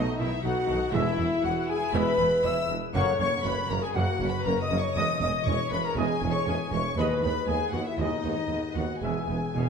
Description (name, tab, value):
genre	cinematic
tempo	119 BPM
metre	4/4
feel	straight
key	F# mixolydian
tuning	A4 = 441 Hz
part	rich symphonic violin section	melody	0.0-9.7 s	D#5 to E6	-36 LUFS	left 6 dB	none
part	dark clarinet	second line	0.0-9.7 s	D#4 to E5	-37 LUFS	left 2 dB	none
part	rich chamber violin section	second line	0.0-9.7 s	D#5 to E6	-37 LUFS	left 4 dB	none
part	silver concert flute	second line	0.0-9.7 s	D#5 to E6	-38 LUFS	left 3 dB	none
part	rich symphonic viola section	accompaniment	0.0-9.6 s	D#3 to E4	-36 LUFS	right 3 dB	none
part	clear trombone section	sustained chords	0.0-9.2 s	B2 to A#3	-41 LUFS	right 5 dB	none
part	mellow French horn section	sustained chords	0.0-9.7 s	D#4 to E5	-30 LUFS	left 3 dB	none
part	concert harp	arpeggios	0.0-9.7 s	E2 to C#5	-37 LUFS	left 6 dB	none
part	dark trumpet section	stabs	0.0-9.2 s	D#5 to F#5	-38 LUFS	right 2 dB	none
part	clear tuba	bass	0.0-9.7 s	E1 to D#2	-35 LUFS	right 4 dB	none
part	rich symphonic cello section	bass	0.0-9.7 s	D#2 to B2	-33 LUFS	right 4 dB	none
part	clear symphonic double bass section	bass	0.2-9.6 s	E1 to D#2	-34 LUFS	right 4 dB	none
part	timpani	percussion	3.0-3.7 s	F#2	-36 LUFS	equal	none
room	wet recital hall reverb, RT60 1.6 s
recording	none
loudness	-24 LUFS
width	side -6 dB against mid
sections	0.0-9.7 A section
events	none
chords	0.0 B7; 1.0 E; 3.0 F#; 5.0 C#madd9/E; 7.0 G#m/D#; 9.0 E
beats	0.45 | 0.95 1.45 1.96 2.45 | 2.95 3.45 3.96 4.46 | 4.96 5.47 5.97 6.48 | 6.99 7.49 8.00 8.51 | 9.03 9.55